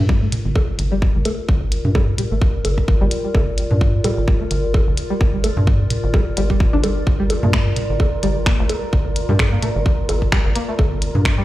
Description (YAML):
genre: minimal techno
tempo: 129 BPM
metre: 4/4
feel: swing 56% on 16ths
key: G minor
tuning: A4 = 441 Hz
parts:
  - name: rubbery square bass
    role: bass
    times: 0.0-11.4 s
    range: G1 to G2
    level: -20 LUFS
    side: equal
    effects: sidechain pumping
  - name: warbly tape-like pad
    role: texture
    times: 0.2-11.4 s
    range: F4 to D5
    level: -27 LUFS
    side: equal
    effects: chorus, built-in reverb, sidechain pumping
  - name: string-like resonator pluck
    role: riff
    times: 0.1-11.4 s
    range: G3 to D4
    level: -26 LUFS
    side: left 1 dB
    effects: chorus, phaser, sidechain pumping, digital delay
  - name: electronic kick drum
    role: drums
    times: 0.1-11.4 s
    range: none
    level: -17 LUFS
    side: equal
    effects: small room reverb
  - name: minimal click drum kit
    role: drums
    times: 0.3-11.4 s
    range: finger snaps, hi-hat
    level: -24 LUFS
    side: equal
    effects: small room reverb
  - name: electronic toms and bongos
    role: percussion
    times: 0.3-11.2 s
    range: none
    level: -24 LUFS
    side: right 1 dB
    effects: small room reverb, digital delay
  - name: flickering grainy texture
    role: texture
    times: 7.3-11.4 s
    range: Bb4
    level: -32 LUFS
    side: left 1 dB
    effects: built-in reverb, sidechain pumping
room: digital ambience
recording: played on a big sound system in a bare room, large studio reverb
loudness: -16 LUFS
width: side -16 dB against mid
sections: 0.0-11.4 A section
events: filter sweep on synth pluck 0.0-11.4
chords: 0.0 Gm7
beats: 0.09 0.56 1.02 | 1.49 1.95 2.42 2.88 | 3.35 3.81 4.28 4.74 | 5.21 5.67 6.14 6.60 | 7.07 7.53 8.00 8.46 | 8.93 9.39 9.86 10.32 | 10.79 11.25